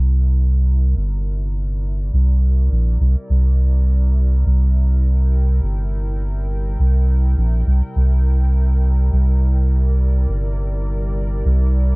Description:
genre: ambient dub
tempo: 103 BPM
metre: 4/4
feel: swing 58% on 16ths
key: C mixolydian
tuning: A4 = 435 Hz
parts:
  - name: warm analog pad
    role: sustained chords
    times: 0.0-12.0 s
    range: C3 to G5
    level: -32 LUFS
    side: equal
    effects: chorus, vintage 12-bit sampler grit
  - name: soft dub sub bass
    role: bass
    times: 0.0-12.0 s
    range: G1 to C2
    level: -15 LUFS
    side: equal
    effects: none
room: little or no reverb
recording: home recording on cassette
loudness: -15 LUFS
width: side -33 dB against mid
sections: 0.0-12.0 A section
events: fade-in on analog synth pad 0.0-12.0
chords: 0.0 C7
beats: 0.09 0.68 | 1.26 1.84 2.42 3.00 | 3.59 4.17 4.75 5.33 | 5.92 6.50 7.08 7.67 | 8.25 8.83 9.41 9.99 | 10.58 11.16 11.74

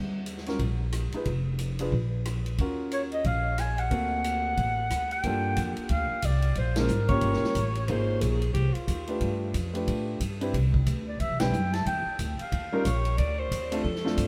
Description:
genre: jazz, small-group swing and bop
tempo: 181 BPM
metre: 4/4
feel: swing 61% on 8ths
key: Eb minor, G minor from 5.2 s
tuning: A4 = 441 Hz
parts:
  - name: upright bass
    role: bass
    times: 0.0-14.3 s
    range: F1 to A2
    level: -31 LUFS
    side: equal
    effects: none
  - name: swinging big-band drum kit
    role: drums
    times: 0.3-14.3 s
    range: hi-hat, kick drum, ride cymbal, rim click, snare drum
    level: -36 LUFS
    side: equal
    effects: none
  - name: warm concert grand piano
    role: accompaniment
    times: 0.5-14.3 s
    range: G3 to Db5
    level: -35 LUFS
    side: equal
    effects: none
  - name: breathy clarinet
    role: melody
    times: 2.9-7.7, 11.1-13.0 s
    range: Bb4 to A5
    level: -34 LUFS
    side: equal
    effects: none
  - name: warm alto saxophone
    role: second line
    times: 7.1-9.4, 12.7-14.3 s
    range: F4 to D5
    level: -35 LUFS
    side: equal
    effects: none
room: light reverb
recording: heard from further back in the room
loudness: -28 LUFS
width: mono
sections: 0.0-5.2 A section; 5.2-14.3 B section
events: band accent 6.7, 11.4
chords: 0.0 Eb5; 1.3 Fdim; 1.9 N.C.; 2.6 Ebm9; 3.9 D7b13; 5.2 Gm9; 6.6 Bbm7; 7.2 Gm9b5; 7.9 Ab6; 9.2 G9; 10.5 Cmaj9; 11.9 Dsus2; 12.5 Eb9; 13.2 Dm7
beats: 0.26 0.60 0.93 | 1.26 1.59 1.92 2.25 | 2.58 2.92 3.25 3.58 | 3.91 4.24 4.57 4.90 | 5.23 5.56 5.89 6.23 | 6.56 6.89 7.22 7.55 | 7.88 8.21 8.54 8.88 | 9.21 9.54 9.87 10.20 | 10.53 10.86 11.20 11.53 | 11.86 12.19 12.52 12.85 | 13.18 13.51 13.84 14.18

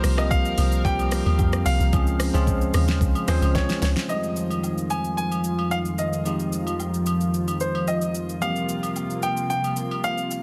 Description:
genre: amapiano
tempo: 111 BPM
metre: 4/4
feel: straight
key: F minor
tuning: A4 = 441 Hz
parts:
  - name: warm grand piano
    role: melody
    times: 0.0-10.4 s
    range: C5 to Ab5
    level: -31 LUFS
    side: equal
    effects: digital delay
  - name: barky tine electric piano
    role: accompaniment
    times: 0.0-10.4 s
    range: E3 to Bb4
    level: -30 LUFS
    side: equal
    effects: none
  - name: lush unison pad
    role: sustained chords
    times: 0.0-10.4 s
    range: F2 to F5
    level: -31 LUFS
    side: equal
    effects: chorus, sidechain pumping
  - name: deep log drum bass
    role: bass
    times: 0.0-4.0 s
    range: C2 to F2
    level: -24 LUFS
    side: equal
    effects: none
  - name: smooth R&B drum kit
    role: drums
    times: 0.0-10.4 s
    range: hi-hat, kick drum, rim click, shaker, snare drum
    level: -30 LUFS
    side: equal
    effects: soft clipping on snare
  - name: agogo bells and woodblock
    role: percussion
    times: 0.2-10.2 s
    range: none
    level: -37 LUFS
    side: equal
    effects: none
room: light reverb, digital ambience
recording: dense, heavily limited modern master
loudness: -23 LUFS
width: mono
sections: 0.0-4.1 A section; 4.1-10.4 B section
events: drop 0.0-4.1; drum fill 3.6-4.1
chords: 0.0 C7sus4; 1.9 Dbmaj7; 4.1 Fm9; 8.4 C7sus4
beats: 0.31 0.85 1.39 | 1.93 2.47 3.01 3.55 | 4.09 4.63 5.17 5.71 | 6.26 6.80 7.34 7.88 | 8.42 8.96 9.50 10.04

